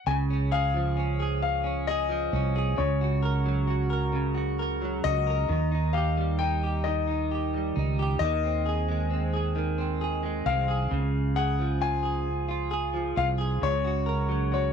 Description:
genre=six-eight pop ballad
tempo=44 BPM (dotted quarters)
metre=6/8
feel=straight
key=Db major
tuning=A4 = 441 Hz
part: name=clear concert grand piano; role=melody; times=0.0-14.7 s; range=Db5 to Ab5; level=-30 LUFS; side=left 12 dB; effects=none
part: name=direct-recorded clean electric guitar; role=accompaniment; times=0.1-14.7 s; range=Db3 to Bb4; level=-30 LUFS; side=right 2 dB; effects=double-tracked left and right
part: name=mellow fretless electric bass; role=bass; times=0.1-14.7 s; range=C2 to Eb2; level=-28 LUFS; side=right 2 dB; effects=none
room=small room ambience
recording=none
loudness=-24 LUFS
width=side -7 dB against mid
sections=0.1-14.7 A section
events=none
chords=0.1 Db; 2.8 Gb/Db; 5.5 Eb; 8.2 Ab/Eb; 10.9 Db; 13.6 Gb/Db

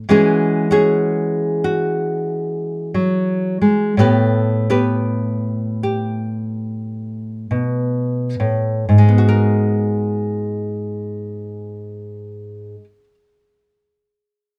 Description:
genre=solo jazz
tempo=43-65 BPM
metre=4/4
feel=swing 66% on 8ths, rubato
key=G# minor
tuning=A4 = 441 Hz
part: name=nylon-string guitar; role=solo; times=0.0-13.1 s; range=G#2 to B4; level=-19 LUFS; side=equal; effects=none
room=light reverb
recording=close, detailed microphones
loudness=-18 LUFS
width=mono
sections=0.0-8.9 A section; 8.9-14.4 B section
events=slowing down 0.1-8.9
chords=0.1 E69; 4.0 Asus2; 8.9 G#m9

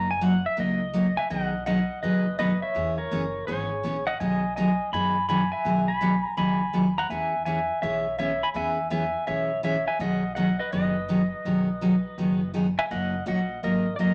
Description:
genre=country, western swing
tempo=166 BPM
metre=4/4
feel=swing 65% on 8ths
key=B major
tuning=A4 = 440 Hz
part: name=pedal steel guitar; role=melody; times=0.0-14.1 s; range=G#4 to B5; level=-30 LUFS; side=equal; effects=none
part: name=picked steel-string acoustic guitar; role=accompaniment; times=0.0-14.1 s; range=B2 to G#4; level=-28 LUFS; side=equal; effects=none
part: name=upright bass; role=bass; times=0.0-14.1 s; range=F#1 to F#2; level=-42 LUFS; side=equal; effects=none
room=wet studio reverb, RT60 0.8 s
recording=none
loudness=-26 LUFS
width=mono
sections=0.0-1.3 A section; 1.3-14.1 B section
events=pedal steel guitar solo 0.0-1.3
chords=0.0 F#6; 1.3 B6; 2.8 E6; 4.2 B6; 7.1 E6; 10.0 B6; 12.9 F#6

